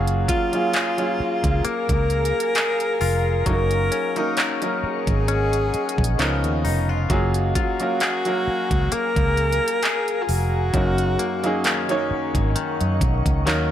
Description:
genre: contemporary R&B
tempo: 66 BPM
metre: 4/4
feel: swing 54% on 16ths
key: Eb minor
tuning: A4 = 440 Hz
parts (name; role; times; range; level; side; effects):
- clear grand piano; accompaniment; 0.0-13.7 s; F3 to F5; -27 LUFS; right 2 dB; none
- glassy FM pad; sustained chords; 0.9-13.7 s; Ab4 to Db6; -31 LUFS; left 1 dB; ensemble chorus, built-in reverb
- direct-recorded clean electric guitar; arpeggios; 0.0-13.7 s; Gb2 to Bb4; -28 LUFS; left 8 dB; none
- vintage muted fingered electric bass; bass; 0.0-13.7 s; F1 to Gb2; -22 LUFS; equal; none
- trap drum kit; drums; 0.1-13.7 s; handclaps, hi-hat, kick drum; -24 LUFS; equal; overdrive
- clear alto saxophone; melody; 0.3-12.1 s; F4 to Bb4; -25 LUFS; equal; digital delay
room: light reverb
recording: none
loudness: -19 LUFS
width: side -10 dB against mid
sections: 0.0-13.7 A section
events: none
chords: 0.0 Gbmaj9; 3.5 Ebm7/Gb; 6.2 Db13; 7.1 Gbmaj9; 10.7 Ebm7/Gb

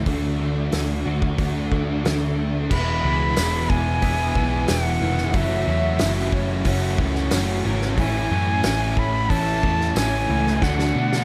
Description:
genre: rock, shoegaze and dream pop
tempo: 91 BPM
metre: 4/4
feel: straight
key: E major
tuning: A4 = 440 Hz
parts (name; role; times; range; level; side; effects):
- direct-recorded clean electric guitar; arpeggios; 0.0-11.2 s; D#3 to F#4; -35 LUFS; equal; none
- overdriven electric guitar; riff; 0.0-11.2 s; A2 to F#4; -32 LUFS; equal; reverse reverb
- thick fuzz guitar; riff; 0.0-11.2 s; E2 to D4; -30 LUFS; equal; distortion, ensemble chorus
- vintage muted picked electric bass; bass; 0.0-11.2 s; E1 to B2; -27 LUFS; equal; none
- loose indie drum kit; drums; 0.1-11.2 s; crash cymbal, hi-hat, kick drum, snare drum; -28 LUFS; equal; none
- bright reedy jazz flute; melody; 2.7-11.2 s; E5 to B5; -28 LUFS; equal; slapback echo
- biting overdriven guitar; riff; 2.7-11.2 s; A2 to F#4; -32 LUFS; equal; none
- tambourine; percussion; 3.4-10.1 s; none; -38 LUFS; equal; none
room: light reverb, small room ambience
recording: none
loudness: -22 LUFS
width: mono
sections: 0.0-2.7 A section; 2.7-11.2 B section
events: drum fill 10.6-11.2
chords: 0.1 D; 2.7 Emaj7; 5.3 F#m7; 8.0 Amaj7; 10.6 D

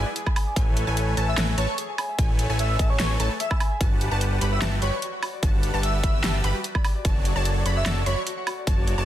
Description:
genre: future bass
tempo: 148 BPM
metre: 4/4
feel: half-time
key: A major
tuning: A4 = 440 Hz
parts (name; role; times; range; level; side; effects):
- Celtic harp; arpeggios; 0.0-9.1 s; F#4 to D6; -36 LUFS; left 3 dB; sidechain pumping, digital delay
- wide unison pluck; arpeggios; 0.0-9.1 s; G#5 to B5; -35 LUFS; equal; sidechain pumping, digital delay
- supersaw chords; riff; 0.0-9.1 s; F#3 to B5; -31 LUFS; equal; sidechain pumping, digital delay
- fat analog bass; bass; 0.0-9.1 s; F#1 to A1; -25 LUFS; equal; sidechain pumping
- big-room dance drum kit; drums; 0.2-9.0 s; hi-hat, snare drum, woodblock; -29 LUFS; right 1 dB; overdrive
- electronic kick drum; drums; 0.3-8.8 s; none; -23 LUFS; equal; overdrive
- airy dreamy lead; melody; 1.3-8.2 s; C#5 to E5; -31 LUFS; equal; chorus, sidechain pumping, digital delay
room: little or no reverb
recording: dense, heavily limited modern master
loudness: -21 LUFS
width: side -12 dB against mid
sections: 0.0-9.1 A section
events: none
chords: 0.0 E7/G#; 0.6 Amaj7; 3.8 Gmaj7; 7.0 Bm7/F#

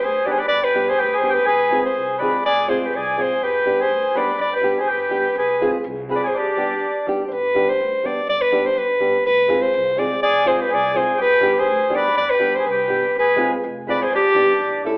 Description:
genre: balkan folk, Balkan wedding band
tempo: 123 BPM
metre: 2/4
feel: straight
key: unclear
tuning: A4 = 440 Hz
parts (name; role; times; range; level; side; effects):
- clear clarinet; melody; 0.0-14.8 s; G4 to D5; -18 LUFS; equal; none
- mellow accordion; second line; 0.0-7.1, 10.2-14.8 s; D4 to B4; -22 LUFS; equal; none
- upright bass; bass; 0.0-14.9 s; F1 to D2; -41 LUFS; equal; none
- nylon-string guitar; accompaniment; 0.3-15.0 s; G3 to A4; -24 LUFS; equal; none
room: wet large studio reverb, RT60 1.3 s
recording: band playing live in one room, telephone sound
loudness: -16 LUFS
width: side -25 dB against mid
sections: 0.0-7.3 A section; 7.3-15.0 A section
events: none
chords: 0.0 G; 1.5 Fm; 3.4 G; 5.4 Fm; 6.3 G; 9.2 Fm; 11.2 G; 13.1 Fm; 14.1 G

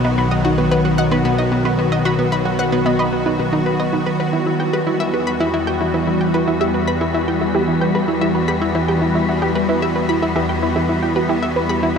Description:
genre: ambient, sequencer-driven space music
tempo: 112 BPM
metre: 4/4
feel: straight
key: E harmonic minor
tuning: A4 = 439 Hz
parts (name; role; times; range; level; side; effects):
- evolving wavetable pad; sustained chords; 0.0-12.0 s; D#3 to F#4; -19 LUFS; equal; ensemble chorus, built-in reverb, shimmer reverb
- warbly dusty pluck; arpeggios; 0.0-11.7 s; D#4 to B5; -24 LUFS; moving between left 1 dB and right 5 dB; chorus, auto-pan, analog delay, shimmer reverb
- analog pluck; riff; 0.0-11.9 s; B3 to B5; -21 LUFS; equal; chorus, analog delay, shimmer reverb
- fat analog bass; bass; 0.0-12.0 s; B1 to E2; -25 LUFS; left 1 dB; none
- wind-like tuned noise texture; texture; 0.0-12.0 s; F#5 to B5; -30 LUFS; left 2 dB; built-in reverb, shimmer reverb
room: wet huge ambient reverb, RT60 9.5 s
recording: none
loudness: -15 LUFS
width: side -6 dB against mid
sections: 0.0-12.0 A section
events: none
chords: 0.0 B; 4.3 Emadd9

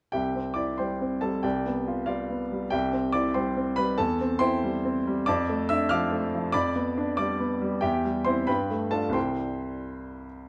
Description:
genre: classical, virtuoso piano study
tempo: 94 BPM (dotted quarters)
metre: 6/8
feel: rubato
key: C major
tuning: A4 = 440 Hz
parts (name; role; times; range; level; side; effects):
- clear baby grand piano; solo; 0.1-10.5 s; C2 to F6; -27 LUFS; equal; none
room: moderate large studio reverb, RT60 1.2 s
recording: none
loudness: -27 LUFS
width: mono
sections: 0.1-10.5 A section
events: none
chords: 0.1 C; 1.4 G7/C; 2.7 C; 4.0 C/E; 5.3 Dm/F; 6.5 G7/F; 7.8 C/E; 8.5 G9; 9.2 C

